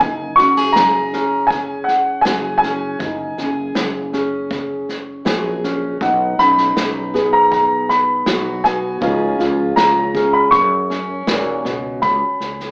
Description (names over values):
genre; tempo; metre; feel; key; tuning
acoustic folk duo or small band; 80 BPM; 4/4; straight; F# major; A4 = 444 Hz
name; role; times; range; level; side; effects
dark upright piano; melody; 0.0-12.7 s; F#5 to C#6; -18 LUFS; equal; none
fingerpicked steel-string acoustic guitar; accompaniment; 0.0-12.7 s; F#2 to G#4; -25 LUFS; equal; none
felt-muted upright piano; arpeggios; 0.0-12.0 s; C#4 to G#4; -26 LUFS; equal; none
fretless electric bass; bass; 0.0-12.7 s; F#1 to F#2; -31 LUFS; equal; none
natural country drum kit; drums; 0.0-12.7 s; kick drum, snare drum; -26 LUFS; equal; none
room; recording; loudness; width
moderate large studio reverb, RT60 0.8 s; band playing live in one room, AM radio sound; -17 LUFS; mono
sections
0.0-12.0 A section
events
none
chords
0.0 F#sus2; 6.0 B; 9.0 C#; 10.5 F#; 12.0 C#7(no3)